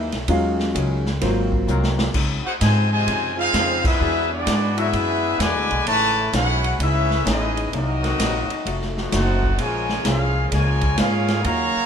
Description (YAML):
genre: jazz, big band swing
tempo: 129 BPM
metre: 4/4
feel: swing 66% on 8ths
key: Db major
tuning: A4 = 440 Hz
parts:
  - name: archtop guitar, miked and amplified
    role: accompaniment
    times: 0.0-11.8 s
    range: Ab2 to G#4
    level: -31 LUFS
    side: left 5 dB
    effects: none
  - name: warm concert grand piano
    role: accompaniment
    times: 0.0-2.1 s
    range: D#3 to F5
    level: -23 LUFS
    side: equal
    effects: none
  - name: upright bass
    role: bass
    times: 0.0-11.8 s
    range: F1 to Ab2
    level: -23 LUFS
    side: equal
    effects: none
  - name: swinging big-band drum kit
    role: drums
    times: 0.1-11.6 s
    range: crash cymbal, hi-hat, kick drum, ride cymbal, snare drum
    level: -26 LUFS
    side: equal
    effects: none
  - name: brilliant trombone section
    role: sustained chords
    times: 0.7-11.7 s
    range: Eb3 to C5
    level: -32 LUFS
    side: left 1 dB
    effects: none
  - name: brilliant trombone section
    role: second line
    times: 2.4-11.9 s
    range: B2 to Gb4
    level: -28 LUFS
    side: right 1 dB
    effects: none
  - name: bright trumpet section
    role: melody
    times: 2.5-11.9 s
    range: B3 to Bb5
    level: -22 LUFS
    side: left 1 dB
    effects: none
room: light reverb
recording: minimal, uncompressed stereo recording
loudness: -18 LUFS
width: side -7 dB against mid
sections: 0.0-2.1 A section; 2.1-11.9 B section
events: grand piano solo 0.0-2.1; drum fill 1.7-2.1; band accent 3.8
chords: 0.3 Ebm11; 1.2 Ab13; 2.1 Dbmaj9; 4.0 E9; 5.9 Amaj9#11; 7.7 Cm7b5; 8.7 F7b9; 9.6 Bbm7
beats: | 0.29 0.75 1.22 1.68 | 2.15 2.61 3.08 3.54 | 4.00 4.47 4.93 5.40 | 5.86 6.33 6.79 7.26 | 7.72 8.19 8.65 9.12 | 9.58 10.04 10.51 10.98 | 11.44